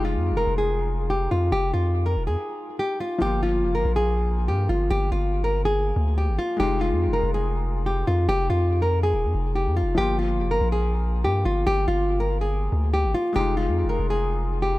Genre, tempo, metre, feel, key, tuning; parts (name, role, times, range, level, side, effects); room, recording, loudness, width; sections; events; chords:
hip hop, drill; 142 BPM; 4/4; half-time; G phrygian; A4 = 441 Hz
nylon-string guitar; melody; 0.0-14.8 s; F4 to Bb4; -24 LUFS; equal; tape echo
felt-muted upright piano; accompaniment; 0.0-14.8 s; F3 to F4; -32 LUFS; left 4 dB
long sustained 808-style bass; bass; 0.0-14.8 s; Eb1 to G2; -24 LUFS; equal
small room ambience; -21 LUFS; side -18 dB against mid
0.0-3.2 A section; 3.2-14.8 B section
break 2.4-3.2
0.0 Fm7; 3.2 Gm7; 6.6 Fm7; 10.0 Gm7; 13.4 Fm7